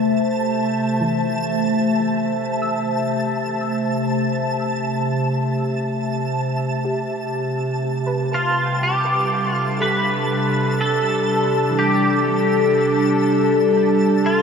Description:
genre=ambient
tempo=61 BPM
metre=3/4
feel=straight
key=unclear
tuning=A4 = 440 Hz
part: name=warbly tape-like pad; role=sustained chords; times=0.0-14.4 s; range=C3 to E5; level=-19 LUFS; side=equal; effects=chorus, built-in reverb, phaser, shimmer reverb
part: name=twinkling granular texture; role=texture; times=0.0-14.4 s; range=A5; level=-27 LUFS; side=left 1 dB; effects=built-in reverb, analog chorus, shimmer reverb
part: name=soft round pluck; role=arpeggios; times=1.0-14.4 s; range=E3 to E6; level=-32 LUFS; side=equal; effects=ensemble chorus, shimmer reverb, ping-pong delay
part: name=pedal steel guitar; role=melody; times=8.3-14.4 s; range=F4 to B4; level=-21 LUFS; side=right 1 dB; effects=ensemble chorus, shimmer reverb, ping-pong delay
room=wet huge ambient reverb, RT60 7.9 s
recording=dreamy mix soaked in reverb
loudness=-17 LUFS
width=side -6 dB against mid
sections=0.0-14.4 A section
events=fade-out on synth pluck 0.0-14.4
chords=0.0 Am7/C; 7.8 G69/C

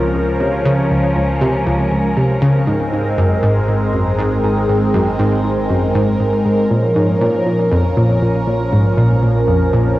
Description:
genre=ambient, sequencer-driven space music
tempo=119 BPM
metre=4/4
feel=straight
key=unclear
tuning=A4 = 440 Hz
part: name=phased analog pad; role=sustained chords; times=0.0-10.0 s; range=F3 to Bb4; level=-17 LUFS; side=equal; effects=phaser, chorus, cassette tape, shimmer reverb
part: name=analog pluck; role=riff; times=0.0-9.9 s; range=Db2 to Db3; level=-16 LUFS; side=equal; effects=chorus, cassette tape, analog delay
part: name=analog drone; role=bass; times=0.0-10.0 s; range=Ab1 to Db2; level=-24 LUFS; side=equal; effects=chorus, tube saturation
room=wet spring reverb, RT60 2.4 s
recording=home recording on cassette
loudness=-13 LUFS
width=side -16 dB against mid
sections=0.0-10.0 A section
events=none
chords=0.0 Db6; 2.7 Abadd9; 6.7 Bbm

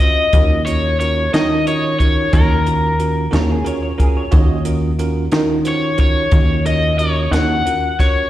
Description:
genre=slow blues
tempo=60 BPM (dotted quarters)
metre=12/8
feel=straight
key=unclear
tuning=A4 = 441 Hz
part: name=crunchy overdriven guitar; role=melody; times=0.0-8.3 s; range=Bb4 to Gb5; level=-18 LUFS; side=left 2 dB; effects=plate reverb, slapback echo
part: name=bell-like tine electric piano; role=accompaniment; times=0.0-8.2 s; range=Db4 to Db5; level=-24 LUFS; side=right 4 dB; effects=fast stereo tremolo, plate reverb, slapback echo
part: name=compact cocktail drum kit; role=drums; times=0.0-8.1 s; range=hi-hat, kick drum, snare drum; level=-16 LUFS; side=equal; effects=none
part: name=plucky analog bass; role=bass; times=0.3-7.6 s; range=Eb2 to Eb3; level=-17 LUFS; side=equal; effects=none
part: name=electric guitar through a small old amp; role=second line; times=3.4-4.6 s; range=Ab4 to Eb5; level=-28 LUFS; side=right 1 dB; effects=analog chorus, plate reverb, slapback echo
room=light reverb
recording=live gig heard through the venue's PA, recital hall reverb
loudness=-13 LUFS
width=side -14 dB against mid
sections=0.0-8.3 A section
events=none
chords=0.0 Ebm7

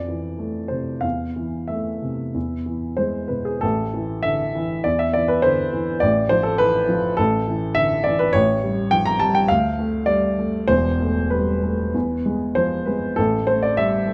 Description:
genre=classical, romantic character piece for solo piano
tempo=90-105 BPM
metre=4/4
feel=rubato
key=A minor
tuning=A4 = 441 Hz
part: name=dark baby grand piano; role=solo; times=0.0-14.1 s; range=E1 to Bb5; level=-21 LUFS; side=equal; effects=none
room=moderate recital hall reverb, RT60 1.4 s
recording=close, detailed microphones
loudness=-21 LUFS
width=mono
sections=0.0-3.6 A section; 3.6-14.1 B section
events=none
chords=0.0 Fmaj7; 1.0 Am/E; 2.3 E; 3.6 Am; 6.0 Dm13/A; 7.2 A5; 8.3 A7; 9.5 Dm; 10.7 Esus4; 11.9 E; 13.2 Am

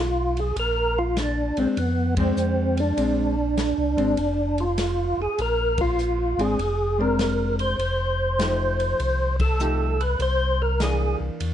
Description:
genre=soul jazz organ trio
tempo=100 BPM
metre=4/4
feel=swing 67% on 8ths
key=unclear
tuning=A4 = 440 Hz
part: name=percussive tonewheel organ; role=melody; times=0.0-11.2 s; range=B3 to C5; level=-24 LUFS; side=right 1 dB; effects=slow rotary speaker, overdrive, chorus vibrato, plate reverb
part: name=mellow tonewheel organ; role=bass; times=0.0-11.5 s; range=F1 to F2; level=-26 LUFS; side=left 1 dB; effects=chorus vibrato, slow rotary speaker
part: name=open jazz drum kit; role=drums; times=0.4-11.5 s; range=hi-hat, kick drum, ride cymbal, snare drum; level=-33 LUFS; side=equal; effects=none
part: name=hollow-body jazz guitar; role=accompaniment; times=1.6-11.5 s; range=E3 to G4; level=-27 LUFS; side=left 2 dB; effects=none
room=light reverb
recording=nothing above 10.9 kHz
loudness=-21 LUFS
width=side -10 dB against mid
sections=0.0-11.5 A section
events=band accent 2.1-2.4, 5.7-6.0, 9.3-9.6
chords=0.0 N.C.; 0.6 Bb9; 7.8 F9; 10.2 C9

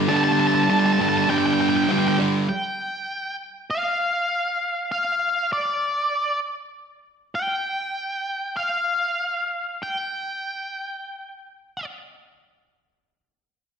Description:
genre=rock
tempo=79-100 BPM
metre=4/4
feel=straight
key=G minor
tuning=A4 = 438 Hz
part: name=fuzz guitar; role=riff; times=0.0-2.5 s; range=G2 to Bb3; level=-19 LUFS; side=right 1 dB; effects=distortion, slapback echo
part: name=octave-fuzz lead guitar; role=melody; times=0.1-11.8 s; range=D5 to A5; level=-24 LUFS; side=equal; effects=distortion, slapback echo
room=wet lush hall reverb, RT60 1.5 s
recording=big arena sound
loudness=-21 LUFS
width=side -7 dB against mid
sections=0.0-2.5 A section; 2.5-12.6 B section; 12.6-13.8 C section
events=slowing down 7.3-12.6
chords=0.0 G5; 2.5 N.C.

